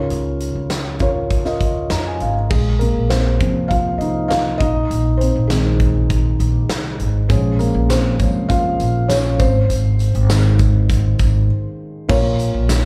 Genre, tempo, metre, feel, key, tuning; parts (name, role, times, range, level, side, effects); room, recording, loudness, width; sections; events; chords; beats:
piano-driven pop; 100 BPM; 4/4; straight; A4 = 440 Hz
felt-muted upright piano; accompaniment; 0.0-12.9 s; Bb2 to Bb5; -22 LUFS; equal
upright bass; bass; 0.0-12.9 s; Ab1 to F2; -20 LUFS; equal
huge arena drum kit; drums; 0.1-12.8 s; crash cymbal, hi-hat, kick drum, snare drum; -23 LUFS; equal
tambourine; percussion; 7.3-12.8 s; -40 LUFS; equal
light reverb, small room reverb; live gig heard through the venue's PA, club reverb; -17 LUFS; mono
0.0-2.5 A section; 2.5-12.1 B section
felt piano fill 1.6-2.5; felt piano solo 2.5-12.1; break 11.5-12.1
0.0 Db6; 2.5 Fsus4/Bb; 4.6 Ab/Bb; 7.3 Db/Bb; 9.4 Ab; 12.1 Bbm
| 0.11 0.71 1.31 1.91 | 2.50 3.10 3.71 4.30 | 4.90 5.50 6.10 6.70 | 7.30 7.90 8.50 9.10 | 9.70 10.30 10.90 11.50 | 12.10 12.70